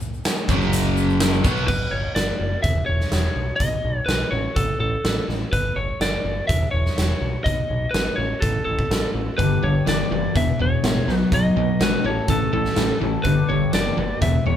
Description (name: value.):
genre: classic rock.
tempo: 124 BPM.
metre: 4/4.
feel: straight.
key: unclear.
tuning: A4 = 440 Hz.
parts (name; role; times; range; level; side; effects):
tube shaker; percussion; 0.0-1.6 s; none; -38 LUFS; left 6 dB; none.
big rock drum kit; drums; 0.3-14.3 s; crash cymbal, hi-hat, kick drum, snare drum; -24 LUFS; equal; none.
distorted electric guitar; riff; 0.5-1.7, 9.4-14.6 s; E2 to B3; -24 LUFS; left 7 dB; distortion.
overdriven semi-hollow guitar; riff; 0.5-1.7, 9.4-14.6 s; E2 to B3; -24 LUFS; right 5 dB; none.
growling picked electric bass; bass; 0.5-14.6 s; E1 to B1; -25 LUFS; equal; overdrive.
lightly driven lead guitar; melody; 1.7-14.6 s; A4 to E5; -25 LUFS; equal; tape echo.
fingerpicked twelve-string acoustic guitar; accompaniment; 9.4-14.6 s; E2 to A4; -32 LUFS; left 5 dB; none.
room: moderate large studio reverb, RT60 1.3 s.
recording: band playing live in one room.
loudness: -19 LUFS.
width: side -10 dB against mid.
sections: 0.0-1.7 A section; 1.7-14.6 B section.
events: none.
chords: 0.5 F#5; 1.4 B5; 1.7 G5; 2.6 C#m/E; 3.4 B; 4.3 N.C.; 5.5 G5; 6.5 C#m/E; 7.2 B; 8.2 N.C.; 9.4 G; 10.4 E; 11.1 B; 12.0 A; 13.3 G.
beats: 0.25 0.73 1.21 | 1.69 2.17 2.65 3.12 | 3.61 4.09 4.57 5.05 | 5.53 6.01 6.50 6.98 | 7.46 7.94 8.43 8.91 | 9.39 9.87 10.36 10.84 | 11.32 11.80 12.29 12.77 | 13.25 13.73 14.22.